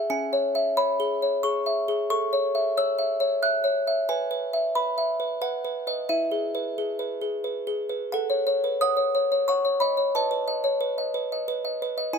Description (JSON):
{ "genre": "classical, lullaby for music box", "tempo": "90 BPM", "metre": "3/4", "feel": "straight", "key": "E major", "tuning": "A4 = 440 Hz", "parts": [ { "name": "music box", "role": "solo", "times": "0.0-12.2 s", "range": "C#4 to F#6", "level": "-23 LUFS", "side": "equal", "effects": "none" } ], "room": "light reverb", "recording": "none", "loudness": "-23 LUFS", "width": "side -6 dB against mid", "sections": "0.0-8.1 A section; 8.1-12.2 B section", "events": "none", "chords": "0.1 C#m; 2.1 A; 4.1 E/B; 5.4 B; 6.1 E; 8.1 F#m/A; 10.1 B7" }